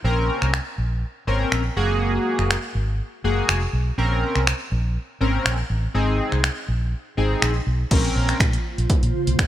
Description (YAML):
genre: dance-pop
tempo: 122 BPM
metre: 4/4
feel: straight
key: Bb minor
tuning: A4 = 440 Hz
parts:
  - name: chorused polysynth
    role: accompaniment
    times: 0.0-8.4 s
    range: Bb3 to Bb4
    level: -24 LUFS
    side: left 1 dB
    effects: sidechain pumping
  - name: vintage muted fingered electric bass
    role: bass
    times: 0.0-9.5 s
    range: F1 to Bb2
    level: -22 LUFS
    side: equal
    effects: sidechain pumping
  - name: punchy analog drum machine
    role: drums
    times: 0.4-9.5 s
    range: crash cymbal, finger snaps, hi-hat, kick drum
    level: -23 LUFS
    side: equal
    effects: none
  - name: ethereal airy pad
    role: sustained chords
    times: 8.6-9.5 s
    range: Db3 to C5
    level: -27 LUFS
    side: right 2 dB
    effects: ensemble chorus, built-in reverb, sidechain pumping
room: light reverb, digital ambience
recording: bright 1980s-style digital production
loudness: -20 LUFS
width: side -13 dB against mid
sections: 0.0-7.9 A section; 7.9-9.5 B section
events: none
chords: 0.0 Bbmadd9; 1.8 Gbadd9; 4.0 Bbmadd9; 5.9 Ab; 7.9 Bbmadd9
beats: | 0.04 0.54 1.03 1.52 | 2.01 2.50 3.00 3.49 | 3.98 4.47 4.96 5.45 | 5.95 6.44 6.93 7.42 | 7.91 8.40 8.90 9.39